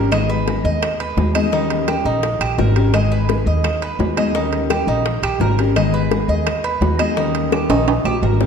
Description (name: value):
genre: latin, Cuban son and guajira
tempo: 170 BPM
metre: 4/4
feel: straight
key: G# minor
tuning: A4 = 441 Hz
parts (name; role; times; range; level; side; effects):
- fingerpicked steel-string acoustic guitar; accompaniment; 0.0-8.5 s; D#3 to G#4; -21 LUFS; left 4 dB; none
- Cuban tres; arpeggios; 0.0-8.5 s; D#4 to D#5; -22 LUFS; right 2 dB; none
- upright bass; bass; 0.0-8.5 s; G#1 to D#2; -20 LUFS; equal; none
- bongos; percussion; 0.1-8.5 s; none; -25 LUFS; left 6 dB; none
- claves; percussion; 0.1-8.2 s; none; -32 LUFS; right 5 dB; none
- timbales; percussion; 0.1-8.5 s; none; -25 LUFS; right 6 dB; none
room: moderate concert hall reverb, RT60 1.8 s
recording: dark, warm production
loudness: -15 LUFS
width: side -6 dB against mid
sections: 0.0-8.5 A section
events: drum fill 7.5-8.5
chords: 0.1 G#m; 1.5 D#7; 2.9 G#m; 4.4 D#7; 5.8 G#m; 7.2 D#7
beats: | 0.12 0.47 0.82 1.18 | 1.53 1.88 2.23 2.59 | 2.94 3.29 3.65 4.00 | 4.35 4.70 5.06 5.41 | 5.76 6.12 6.47 6.82 | 7.17 7.53 7.88 8.23